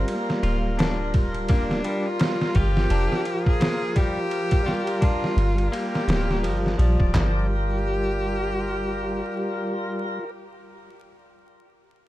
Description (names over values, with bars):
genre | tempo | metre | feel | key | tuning
trip hop | 85 BPM | 4/4 | swing 58% on 16ths | G minor | A4 = 440 Hz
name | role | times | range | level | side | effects
clear cello | melody | 0.0-10.3 s | Bb3 to Ab4 | -30 LUFS | equal | tape echo
tonewheel organ | accompaniment | 0.0-10.3 s | F3 to D5 | -28 LUFS | equal | overdrive, slow rotary speaker, harmonic tremolo, tape echo
soft 808-style bass | bass | 0.0-9.2 s | D1 to Bb1 | -24 LUFS | equal | none
trip hop sampler-style drum kit | drums | 0.1-7.3 s | handclaps, kick drum, ride cymbal, snare drum | -24 LUFS | equal | small room reverb
clean electric guitar | arpeggios | 0.4-7.5 s | F3 to F4 | -33 LUFS | left 3 dB | digital delay
room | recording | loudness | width
little or no reverb | dark, warm production, vinyl crackle | -21 LUFS | side -15 dB against mid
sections
0.0-7.1 A section; 7.1-10.0 B section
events
none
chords
0.0 Gm7